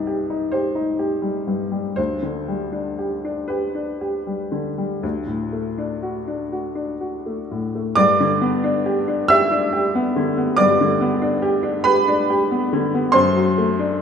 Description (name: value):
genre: classical, romantic nocturne for solo piano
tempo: 39-48 BPM (dotted quarters)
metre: 12/8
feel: rubato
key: G major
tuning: A4 = 445 Hz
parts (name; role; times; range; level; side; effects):
- clear upright piano; solo; 0.0-14.0 s; C2 to E6; -18 LUFS; equal; none
room: wet recital hall reverb, RT60 1.7 s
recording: minimal, uncompressed stereo recording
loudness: -18 LUFS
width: side -7 dB against mid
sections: 0.0-8.0 A section; 8.0-14.0 B section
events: none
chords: 0.0 Cm; 2.0 G/D; 5.0 D; 8.0 G; 13.2 D7/F#